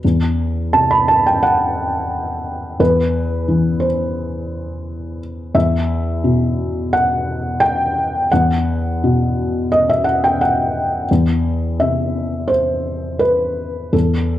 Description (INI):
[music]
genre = neoclassical minimalist piano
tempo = 87 BPM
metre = 4/4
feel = rubato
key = E minor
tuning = A4 = 440 Hz
[part]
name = felt-muted upright piano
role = solo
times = 0.0-14.4 s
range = E2 to B5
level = -15 LUFS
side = equal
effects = none
[sound]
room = wet spring reverb, RT60 1.2 s, small room ambience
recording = cassette tape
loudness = -15 LUFS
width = side -13 dB against mid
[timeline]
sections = 0.0-14.4 A section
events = none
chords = 0.0 Am13/E; 2.8 N.C.; 5.5 Em; 11.1 Cmaj7/E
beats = | 0.03 0.72 1.42 2.11 | 2.79 3.49 4.18 4.86 | 5.55 6.23 6.92 7.61 | 8.30 8.99 9.68 10.38 | 11.08 11.78 12.48 13.19 | 13.93